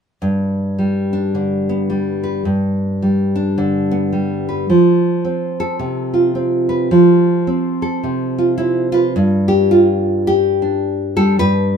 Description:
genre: folk, solo fingerstyle acoustic guitar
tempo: 108 BPM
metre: 4/4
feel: swing 61% on 8ths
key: G mixolydian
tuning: A4 = 439 Hz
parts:
  - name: nylon-string guitar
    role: solo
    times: 0.2-11.8 s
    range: G2 to B4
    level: -14 LUFS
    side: equal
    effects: none
room: light reverb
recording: minimal, uncompressed stereo recording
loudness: -14 LUFS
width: side -6 dB against mid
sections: 0.2-9.1 A section; 9.1-11.8 B section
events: none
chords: 0.2 G; 4.7 F; 9.1 G

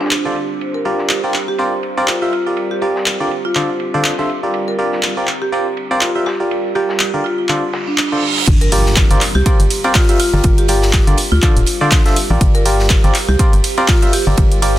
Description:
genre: piano house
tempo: 122 BPM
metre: 4/4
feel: swing 56% on 16ths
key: G minor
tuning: A4 = 439 Hz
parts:
  - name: marimba with medium mallets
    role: melody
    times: 0.0-14.8 s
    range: D4 to Bb4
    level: -21 LUFS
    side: right 1 dB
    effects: dub echo
  - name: deep reggae drum kit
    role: drums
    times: 0.0-14.8 s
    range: hi-hat, ride cymbal, snare drum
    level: -29 LUFS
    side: right 1 dB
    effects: high-pass filter on cymbals, low-pass filter on cymbals, high-pass filter on hats, low-pass filter on hats, soft clipping on snare, high-pass filter on snare, low-pass filter on snare, high-pass filter on room, low-pass filter on room
  - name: deep dark ambient pad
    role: texture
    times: 0.0-14.8 s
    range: D4 to F5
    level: -27 LUFS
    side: equal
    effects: chorus, built-in reverb, sidechain pumping
  - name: punchy analog drum machine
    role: drums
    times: 0.1-14.7 s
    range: crash cymbal, handclaps, hi-hat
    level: -19 LUFS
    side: equal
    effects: none
  - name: barking FM electric piano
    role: riff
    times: 0.3-14.8 s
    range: D3 to E5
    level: -19 LUFS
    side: equal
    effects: chorus, sidechain pumping, dub echo
  - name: reverse cymbal and impact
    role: sound effects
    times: 7.8-10.4 s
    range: none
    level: -22 LUFS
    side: right 2 dB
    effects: none
  - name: organ-like FM bass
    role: bass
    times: 8.5-14.8 s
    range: D1 to D2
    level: -16 LUFS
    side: equal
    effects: sidechain pumping
  - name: electronic kick drum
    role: drums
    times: 8.5-14.5 s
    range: none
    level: -13 LUFS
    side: equal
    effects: none
room: light reverb, studio ambience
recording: dense, heavily limited modern master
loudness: -12 LUFS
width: side -14 dB against mid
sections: 0.0-8.5 A section; 8.5-14.8 B section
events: reverse cymbal 7.8-8.5; drop 8.5-14.8; impact 8.5-10.4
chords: 0.0 Dm7; 0.6 Gm7; 1.3 C9sus4; 2.3 Gm7; 3.3 Dm7; 4.5 Gm7; 5.3 C9sus4; 6.3 Gm7; 7.2 Dm7; 8.5 Gm7; 9.2 C9sus4; 10.2 Gm7; 11.2 Dm7; 12.4 Gm7; 13.1 C9sus4; 14.1 Gm7

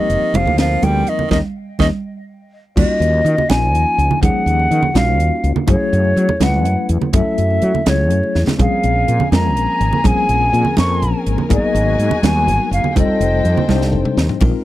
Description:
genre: electric jazz fusion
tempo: 82 BPM (dotted quarters)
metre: 6/8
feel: straight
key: Eb minor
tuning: A4 = 441 Hz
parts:
  - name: hollow concert flute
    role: melody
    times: 0.0-13.9 s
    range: Db5 to Db6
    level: -18 LUFS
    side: equal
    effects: none
  - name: edgy tenor saxophone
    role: second line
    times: 0.0-1.9 s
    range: Eb3 to G3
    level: -24 LUFS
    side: right 11 dB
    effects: none
  - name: bell-like tine electric piano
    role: accompaniment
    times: 0.0-14.6 s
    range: F3 to C5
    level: -21 LUFS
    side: left 5 dB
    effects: fast stereo tremolo
  - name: fretless electric bass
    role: bass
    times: 0.1-14.5 s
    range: F1 to Gb3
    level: -17 LUFS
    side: equal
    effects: none
  - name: crisp fusion drum kit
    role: drums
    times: 0.1-14.5 s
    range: crash cymbal, hi-hat, kick drum, ride cymbal, snare drum, toms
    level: -19 LUFS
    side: equal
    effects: none
  - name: congas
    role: percussion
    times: 0.2-14.5 s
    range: none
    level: -21 LUFS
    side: right 4 dB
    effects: none
  - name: muted studio string section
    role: sustained chords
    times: 8.6-14.4 s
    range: Gb4 to Ab5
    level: -28 LUFS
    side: left 3 dB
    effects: none
room: little or no reverb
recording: dry, close 1970s-style studio recording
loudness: -13 LUFS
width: side -15 dB against mid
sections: 0.0-2.8 A section; 2.8-14.4 B section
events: band accent 1.3-2.8; drum fill 2.0-2.8, 8.4, 13.7-14.4; tine electric piano fill 2.0-2.8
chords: 0.0 F9sus4; 1.3 Eb5; 2.8 Ebm9; 5.7 Gbm9; 8.6 Bbm9; 11.5 Abm9; 13.0 F13

